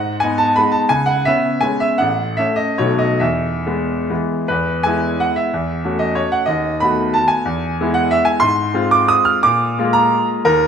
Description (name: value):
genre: classical, romantic triple-time dance for piano with dotted rhythms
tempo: 127-201 BPM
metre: 3/4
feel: rubato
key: E major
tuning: A4 = 441 Hz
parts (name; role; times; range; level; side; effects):
- bright grand piano; solo; 0.0-10.7 s; A1 to F6; -14 LUFS; equal; none
room: wet recital hall reverb, RT60 1.7 s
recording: minimal, uncompressed stereo recording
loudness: -14 LUFS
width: side -7 dB against mid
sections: 0.0-4.5 A section; 4.5-10.7 B section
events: none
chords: 0.0 G#m; 0.9 C#m7; 2.0 A; 2.8 B7; 3.2 E; 5.5 F#m7/E; 6.5 B7/D#; 7.5 E; 8.4 Fm/Ab; 9.4 Bb7